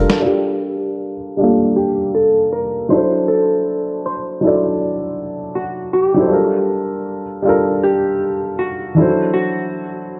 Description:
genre	hip hop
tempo	79 BPM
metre	4/4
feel	swing 61% on 16ths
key	G dorian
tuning	A4 = 440 Hz
part	dark upright piano	accompaniment	0.0-10.2 s	E3 to D5	-19 LUFS	equal	cassette tape, low-pass filter
part	vintage hollow-body jazz guitar	melody	0.2-10.2 s	F#4 to C5	-22 LUFS	equal	lush chorus, low-pass filter, analog delay
room	wet plate reverb, RT60 1.6 s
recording	dreamy mix soaked in reverb, cassette tape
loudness	-17 LUFS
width	mono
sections	0.2-10.2 A section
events	break 0.0; filter sweep 0.2-10.2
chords	0.2 Gm7; 2.9 D7/F#; 6.3 Gm7; 9.0 D7/F#

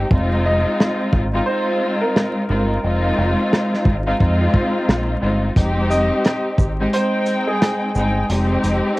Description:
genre	hip hop, boom-bap hip-hop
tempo	88 BPM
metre	4/4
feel	swing 61% on 16ths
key	unclear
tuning	A4 = 439 Hz
part	warm studio string section	accompaniment	0.0-9.0 s	Ab3 to G5	-19 LUFS	equal	high-pass filter, low-pass filter, cassette tape, plate reverb
part	deep dub fingered electric bass	bass	0.0-8.8 s	F1 to F2	-20 LUFS	equal	none
part	warm soul drum kit	drums	0.1-9.0 s	hi-hat, kick drum, rim click, shaker, snare drum	-17 LUFS	equal	cassette tape
part	bright upright piano	melody	0.5-8.2 s	Ab4 to Eb5	-24 LUFS	equal	high-pass filter, low-pass filter, cassette tape, plate reverb, analog delay
room	light reverb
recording	home recording on cassette, vinyl crackle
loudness	-16 LUFS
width	side -19 dB against mid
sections	0.0-9.0 A section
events	break 0.0-5.6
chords	0.1 Bb7sus4/F (rootless); 5.6 Fm7

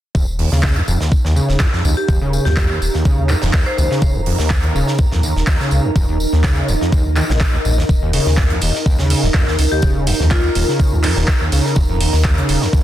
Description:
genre	acid house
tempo	124 BPM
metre	4/4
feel	swing 53% on 16ths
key	unclear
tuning	A4 = 440 Hz
part	overdriven acid bass	riff	0.1-12.8 s	Eb1 to Eb3	-20 LUFS	equal	distortion, ensemble chorus, cassette tape, tape echo
part	round analog bass	bass	0.1-12.6 s	Eb1 to Eb2	-18 LUFS	equal	sidechain pumping
part	electronic kick drum	drums	0.1-12.8 s	none	-16 LUFS	equal	none
part	ethereal airy pad	texture	0.5-12.8 s	Eb4 to Bb5	-24 LUFS	right 1 dB	ensemble chorus, built-in reverb, sidechain pumping
part	gated 80s drum kit	drums	0.2-12.8 s	hi-hat, snare drum, tambourine	-28 LUFS	right 1 dB	high-pass filter on hats, soft clipping on snare, high-pass filter on snare, high-pass filter on perc, high-pass filter on room
part	booming analog drum machine	drums	0.6-12.6 s	handclaps, hi-hat	-23 LUFS	right 1 dB	none
part	vibraphone with hard mallets	melody	2.0-3.9, 9.7-10.8 s	F4 to C5	-24 LUFS	left 2 dB	tape echo
room	small room ambience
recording	dense, heavily limited modern master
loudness	-13 LUFS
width	side -12 dB against mid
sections	0.1-12.8 A section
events	none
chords	0.1 Eb5

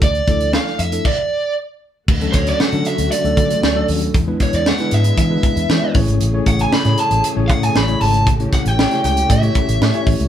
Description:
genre	polished 1980s jazz-funk pop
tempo	116 BPM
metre	4/4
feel	straight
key	A major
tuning	A4 = 440 Hz
part	lead guitar through a small cranked amp	melody	0.0-10.0 s	C5 to B5	-20 LUFS	right 2 dB	overdrive
part	tine electric piano	accompaniment	0.0-10.3 s	E3 to C#5	-22 LUFS	left 3 dB	medium stereo tremolo
part	vintage muted fingered electric bass	bass	0.0-10.3 s	G#1 to E3	-19 LUFS	equal	none
part	tight funk drum kit	drums	0.0-10.3 s	crash cymbal, hi-hat, kick drum, snare drum	-18 LUFS	equal	none
part	dark studio string section	sustained chords	2.1-10.3 s	C#3 to G#4	-27 LUFS	equal	none
room	moderate studio reverb, RT60 0.7 s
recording	band playing live in one room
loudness	-14 LUFS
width	side -10 dB against mid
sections	0.0-2.1 A section; 2.1-10.3 B section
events	stop 1.1-2.1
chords	0.0 Dmadd9; 2.1 Dmaj7; 4.1 E7; 5.9 Amaj7; 8.3 A7

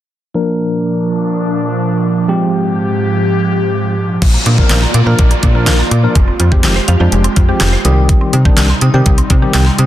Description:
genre	dance-pop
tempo	124 BPM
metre	4/4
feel	straight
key	unclear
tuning	A4 = 440 Hz
part	tine electric piano	accompaniment	0.3-9.6 s	Eb3 to Bb4	-17 LUFS	left 2 dB	medium stereo tremolo, sidechain pumping, low-pass filter
part	airy breathy pad	sustained chords	0.7-9.9 s	Ab2 to D5	-17 LUFS	right 2 dB	chorus, sidechain pumping, low-pass filter
part	mallet-like synth pluck	arpeggios	4.2-9.9 s	F3 to G6	-23 LUFS	right 5 dB	chorus, sidechain pumping, digital delay
part	slap-like FM bass	bass	4.2-9.9 s	F1 to C3	-12 LUFS	equal	sidechain pumping
part	pop drum kit	drums	4.2-9.9 s	crash cymbal, handclaps, hi-hat, kick drum, snare drum	-12 LUFS	equal	overdrive
part	downlifter	sound effects	4.2-8.1 s	none	-24 LUFS	equal	none
room	light reverb, digital ambience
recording	dense, heavily limited modern master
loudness	-10 LUFS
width	side -13 dB against mid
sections	0.3-4.2 A section; 4.2-9.9 B section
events	filter sweep 0.3-4.2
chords	0.3 Bb; 2.3 Fmadd9; 4.0 Bb; 6.2 Fmadd9; 7.8 Cm

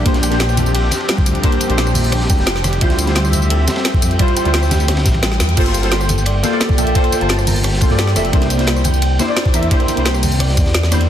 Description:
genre	liquid drum and bass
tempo	174 BPM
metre	4/4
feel	straight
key	G dorian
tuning	A4 = 440 Hz
part	deep mellow chord stab	accompaniment	0.0-11.1 s	G3 to A5	-20 LUFS	equal	ensemble chorus, tape echo
part	warm analog pad	sustained chords	0.0-5.5 s	F3 to E5	-24 LUFS	left 1 dB	chorus, sidechain pumping
part	Celtic harp	arpeggios	0.0-11.1 s	G3 to G5	-25 LUFS	right 1 dB	ping-pong delay
part	dark detuned saw bass	bass	0.0-11.1 s	F1 to G2	-17 LUFS	equal	tube saturation
part	crunchy breakbeat drum kit	drums	0.1-11.0 s	hi-hat, ride cymbal, snare drum	-25 LUFS	equal	high-pass filter on cymbals, high-pass filter on hats, high-pass filter on snare, high-pass filter on room
part	drum and bass drum kit	drums	0.1-11.1 s	crash cymbal, hi-hat, rim click, snare drum, tambourine	-21 LUFS	equal	none
part	electronic kick drum	drums	0.1-10.6 s	none	-16 LUFS	equal	none
part	congas	percussion	0.6-11.0 s	none	-25 LUFS	equal	none
room	light reverb, small room ambience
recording	dense, heavily limited modern master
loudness	-13 LUFS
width	side -10 dB against mid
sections	0.0-5.6 A section; 5.6-11.1 A section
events	drop 0.0-5.6, 5.6-11.1; kick drops out 5.2-5.6; drum fill 5.4; band accent 5.4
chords	0.1 Bb69; 2.8 Dm11; 5.6 Gm11; 8.3 C9

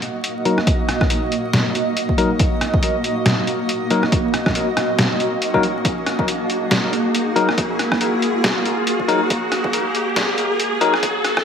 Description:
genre	deep dubstep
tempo	139 BPM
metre	4/4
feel	swing 58% on 16ths, half-time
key	Eb minor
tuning	A4 = 443 Hz
part	granular cloud pad	sustained chords	0.0-11.4 s	Bb3 to Eb5	-21 LUFS	right 1 dB	built-in reverb
part	trip hop sampler-style drum kit	drums	0.0-11.4 s	hi-hat, rim click, snare drum	-21 LUFS	equal	none
part	riser	sound effects	2.1-11.4 s	none	-27 LUFS	equal	none
part	bell-like tine electric piano	stabs	0.5-10.9 s	Gb3 to Bb4	-22 LUFS	left 4 dB	low-pass filter, dub echo
part	electronic kick drum	drums	0.7-11.4 s	none	-21 LUFS	equal	none
room	moderate echo chamber reverb, RT60 1.4 s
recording	vinyl crackle, high-pass filter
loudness	-16 LUFS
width	side -7 dB against mid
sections	0.0-11.4 A section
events	build-up 0.0-11.4; filter sweep on tine electric piano 0.0-11.4; filter sweep 0.0-11.4; riser 2.1-11.4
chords	0.0 Ebm

